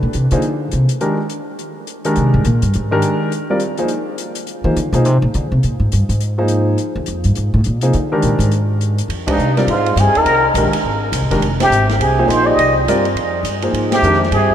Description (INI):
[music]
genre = modal jazz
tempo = 208 BPM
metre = 4/4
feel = swing 61% on 8ths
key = F dorian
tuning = A4 = 440 Hz
[part]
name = upright bass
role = bass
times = 0.0-14.5 s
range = F1 to Eb3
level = -16 LUFS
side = equal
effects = none
[part]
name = open jazz drum kit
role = drums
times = 0.1-14.5 s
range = hi-hat, kick drum, ride cymbal, snare drum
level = -26 LUFS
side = equal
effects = none
[part]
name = warm concert grand piano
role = accompaniment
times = 0.3-14.2 s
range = Eb3 to Eb5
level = -19 LUFS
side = equal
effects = none
[part]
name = trumpet with plunger mute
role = melody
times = 9.3-14.5 s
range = Eb4 to Eb5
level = -16 LUFS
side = equal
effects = none
[part]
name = trombone with cup mute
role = second line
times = 9.3-14.5 s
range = G2 to G3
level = -21 LUFS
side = right 2 dB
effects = none
[sound]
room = moderate cathedral reverb, RT60 5.2 s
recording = in a vast, echoing space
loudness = -13 LUFS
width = side -10 dB against mid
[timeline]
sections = 0.0-9.1 A section; 9.1-14.5 B section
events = upright bass solo 0.0-9.1; band accent 9.2, 11.6, 13.9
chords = 0.0 Fm9